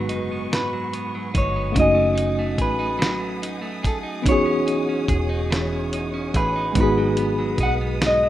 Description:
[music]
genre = slow six-eight R&B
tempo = 48 BPM (dotted quarters)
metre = 6/8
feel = straight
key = unclear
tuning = A4 = 438 Hz
[part]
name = clean electric guitar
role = melody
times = 0.0-8.3 s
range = A4 to F#5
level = -24 LUFS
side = left 1 dB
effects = slapback echo
[part]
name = clean electric guitar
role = second line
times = 0.0-8.3 s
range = G#2 to G#4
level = -30 LUFS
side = right 3 dB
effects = none
[part]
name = tine electric piano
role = accompaniment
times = 0.0-8.3 s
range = G#3 to G#5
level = -24 LUFS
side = equal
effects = overdrive, fast stereo tremolo
[part]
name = warm studio string section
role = sustained chords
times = 0.0-8.3 s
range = A3 to D#6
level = -36 LUFS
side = left 2 dB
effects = none
[part]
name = vintage muted fingered electric bass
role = bass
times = 0.0-8.3 s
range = E1 to B1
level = -27 LUFS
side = equal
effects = none
[part]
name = dusty soul sampler-style drum kit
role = drums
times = 0.1-8.2 s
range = hi-hat, kick drum, snare drum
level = -23 LUFS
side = equal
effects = none
[sound]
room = little or no reverb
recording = rough home demo mix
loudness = -19 LUFS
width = side -13 dB against mid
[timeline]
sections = 0.0-8.3 A section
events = none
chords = 0.0 G#m7; 1.8 F#m69; 4.3 Emaj13; 6.8 G#m7

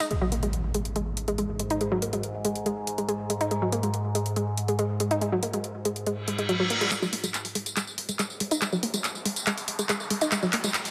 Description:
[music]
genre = driving peak-time techno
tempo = 141 BPM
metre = 4/4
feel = straight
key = unclear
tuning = A4 = 440 Hz
[part]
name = analog pluck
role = riff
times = 0.0-10.7 s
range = F#3 to D#4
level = -31 LUFS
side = equal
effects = chorus, overdrive, digital delay
[part]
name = techno drum kit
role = drums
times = 0.0-10.9 s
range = handclaps, hi-hat, ride cymbal, tambourine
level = -32 LUFS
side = equal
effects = none
[part]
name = overtone-sweeping drone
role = drone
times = 1.2-7.0 s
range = G#2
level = -35 LUFS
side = equal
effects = chorus, built-in reverb
[part]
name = impact, reverse cymbal and riser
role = sound effects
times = 0.1-1.8, 6.2-10.9 s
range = none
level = -35 LUFS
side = equal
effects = none
[sound]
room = moderate lush hall reverb, RT60 2.0 s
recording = none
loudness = -28 LUFS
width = mono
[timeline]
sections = 0.1-6.9 A section; 6.9-10.9 B section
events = impact 0.1-1.8; reverse cymbal 6.2-6.9; build-up 6.9-10.9; drum fill 6.9-10.9; riser 6.9-10.9; filter sweep on synth arpeggio sound 6.9-10.9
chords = 0.1 G#5

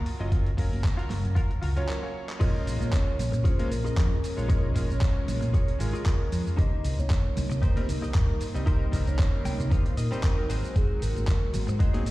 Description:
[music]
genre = nu-disco, nu disco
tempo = 115 BPM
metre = 4/4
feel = swing 55% on 16ths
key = Bb minor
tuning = A4 = 439 Hz
[part]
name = direct-recorded clean electric guitar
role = riff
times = 0.0-12.1 s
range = Eb4 to G5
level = -40 LUFS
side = left 1 dB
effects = analog chorus
[part]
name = dusty soul sampler-style drum kit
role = drums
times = 0.1-12.1 s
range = crash cymbal, handclaps, hi-hat, shaker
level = -40 LUFS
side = right 1 dB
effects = overdrive
[part]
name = bright electric grand piano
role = accompaniment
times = 0.2-12.0 s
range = C3 to F5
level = -37 LUFS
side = equal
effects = sidechain pumping
[part]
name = hollow-body short-scale fingered electric bass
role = bass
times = 0.2-12.1 s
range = Gb1 to C3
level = -28 LUFS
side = equal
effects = none
[part]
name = electronic kick drum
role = drums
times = 0.3-11.9 s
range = none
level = -24 LUFS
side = equal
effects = overdrive
[part]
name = congas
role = percussion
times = 0.7-12.0 s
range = none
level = -39 LUFS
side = right 2 dB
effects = none
[part]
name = soft octave-layered synth lead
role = melody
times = 1.9-12.1 s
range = Ab4 to Eb5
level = -37 LUFS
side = right 1 dB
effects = chorus, phaser, dub echo
[part]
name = string machine, full ensemble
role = sustained chords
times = 2.4-12.1 s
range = Ab3 to C6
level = -37 LUFS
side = equal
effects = ensemble chorus, vintage 12-bit sampler grit, sidechain pumping
[sound]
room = digital ambience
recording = played on a big sound system in a bare room, large studio reverb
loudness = -24 LUFS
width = side -18 dB against mid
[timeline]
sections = 0.0-2.4 A section; 2.4-12.1 B section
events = break 1.9-2.4; drum fill 1.9-2.4; drop 2.4-12.1; clean electric guitar fill 9.2-10.8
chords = 0.0 Gbmaj7; 2.4 Bbm7; 6.6 Cm7; 10.5 Ab7

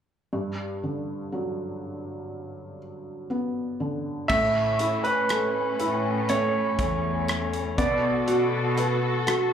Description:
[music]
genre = pop ballad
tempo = 60 BPM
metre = 4/4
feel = straight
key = G major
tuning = A4 = 439 Hz
[part]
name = felt-muted upright piano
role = accompaniment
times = 0.3-9.5 s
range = G2 to B4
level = -29 LUFS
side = equal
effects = plate reverb, slapback echo
[part]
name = warm concert grand piano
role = melody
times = 4.3-8.7 s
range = B4 to E5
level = -25 LUFS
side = right 2 dB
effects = plate reverb, slapback echo, digital delay
[part]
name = dark studio string section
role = sustained chords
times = 4.3-9.5 s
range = A3 to A4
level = -30 LUFS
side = left 2 dB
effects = plate reverb
[part]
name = dark studio cello section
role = bass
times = 4.3-9.5 s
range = E2 to B2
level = -29 LUFS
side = left 2 dB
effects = none
[part]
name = modern studio drum kit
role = drums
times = 4.3-9.5 s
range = crash cymbal, hi-hat, kick drum, rim click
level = -32 LUFS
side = equal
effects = none
[sound]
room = moderate club reverb, RT60 0.5 s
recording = live gig heard through the venue's PA, club reverb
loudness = -23 LUFS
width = side -8 dB against mid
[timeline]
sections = 0.3-4.3 A section; 4.3-9.5 B section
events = none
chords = 0.3 Gmaj7; 4.3 Aadd9; 7.8 Gmaj7 (rootless)

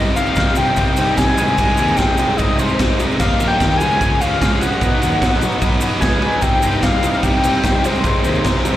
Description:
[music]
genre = indie rock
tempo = 149 BPM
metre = 4/4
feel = straight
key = unclear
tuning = A4 = 441 Hz
[part]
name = overdriven synth lead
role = melody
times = 0.0-8.8 s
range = C5 to Ab5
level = -20 LUFS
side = left 2 dB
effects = slapback echo
[part]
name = overdriven combo organ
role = sustained chords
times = 0.0-8.8 s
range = C4 to Ab5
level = -31 LUFS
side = right 1 dB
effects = none
[part]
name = cranked stack guitar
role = riff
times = 0.0-8.8 s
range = Cb3 to Eb4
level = -23 LUFS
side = left 6 dB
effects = overdrive, slapback echo
[part]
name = crunchy overdriven guitar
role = riff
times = 0.0-8.8 s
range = Cb3 to Eb4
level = -23 LUFS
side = right 7 dB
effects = wide subtle chorus, slapback echo
[part]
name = fuzz picked electric bass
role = bass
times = 0.0-8.8 s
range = G1 to Eb2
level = -22 LUFS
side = equal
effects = overdrive
[part]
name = raw garage drum kit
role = drums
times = 0.2-8.7 s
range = crash cymbal, kick drum, ride cymbal, snare drum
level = -18 LUFS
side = equal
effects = none
[part]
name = egg shaker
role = percussion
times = 0.2-8.8 s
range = none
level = -35 LUFS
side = right 3 dB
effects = none
[sound]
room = light reverb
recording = live gig heard through the venue's PA, recital hall reverb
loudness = -14 LUFS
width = side -13 dB against mid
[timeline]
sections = 0.0-8.8 A section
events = none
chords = 0.0 Cm; 1.4 Abmaj7/C; 3.2 Ebadd9; 3.8 Dbmaj7; 4.8 Cb6; 6.4 Cm; 7.8 Abmaj7/C

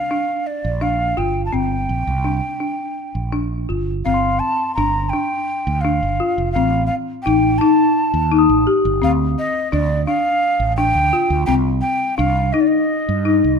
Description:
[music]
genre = contemporary instrumental, chamber music in an uneven meter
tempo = 169 BPM (eighths)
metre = 7/8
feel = straight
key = G minor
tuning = A4 = 440 Hz
[part]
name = breathy mellow jazz flute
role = melody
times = 0.0-13.6 s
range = D5 to Bb5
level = -20 LUFS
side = right 1 dB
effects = none
[part]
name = folk marimba with medium hard mallets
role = arpeggios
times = 0.1-13.5 s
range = C4 to G4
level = -19 LUFS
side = left 4 dB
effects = none
[part]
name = mellow fretless electric bass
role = bass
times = 0.6-13.6 s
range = F1 to G2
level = -22 LUFS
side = right 2 dB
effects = none
[part]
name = glockenspiel with rubber mallets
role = texture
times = 4.1-9.3 s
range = C6 to Eb6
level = -28 LUFS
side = left 4 dB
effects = none
[sound]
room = light reverb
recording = none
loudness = -16 LUFS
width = side -6 dB against mid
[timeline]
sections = 0.0-4.1 A section; 4.1-13.6 B section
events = none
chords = 0.0 Gm7; 4.1 G5; 6.6 Am7b5; 9.0 Dm7; 11.5 Cm

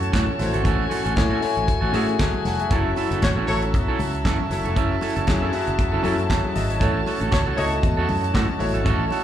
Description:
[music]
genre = disco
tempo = 117 BPM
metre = 4/4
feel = swing 56% on 16ths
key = unclear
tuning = A4 = 441 Hz
[part]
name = bright baby grand piano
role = accompaniment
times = 0.0-9.2 s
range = F#3 to A5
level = -27 LUFS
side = left 4 dB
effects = slapback echo
[part]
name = clean electric guitar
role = accompaniment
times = 0.0-9.2 s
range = C#4 to A4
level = -28 LUFS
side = right 7 dB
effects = slapback echo
[part]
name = warm chamber string section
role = sustained chords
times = 0.0-9.2 s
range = F#4 to A5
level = -28 LUFS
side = left 1 dB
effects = none
[part]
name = fingered electric bass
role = bass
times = 0.0-9.1 s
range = E#1 to A2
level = -24 LUFS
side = equal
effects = none
[part]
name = damped 70s drum kit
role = drums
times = 0.0-9.2 s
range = handclaps, hi-hat, kick drum, snare drum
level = -24 LUFS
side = equal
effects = none
[part]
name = congas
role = percussion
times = 0.1-9.2 s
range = none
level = -33 LUFS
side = left 5 dB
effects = slapback echo
[part]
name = warm horn section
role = stabs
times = 3.2-3.6, 7.3-7.7 s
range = F#4 to C#5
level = -26 LUFS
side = left 1 dB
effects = slapback echo
[sound]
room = light reverb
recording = live gig heard through the venue's PA, club reverb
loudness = -19 LUFS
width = side -10 dB against mid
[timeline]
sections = 0.0-9.2 A section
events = none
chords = 0.0 A6; 2.7 F#m7; 6.8 A6

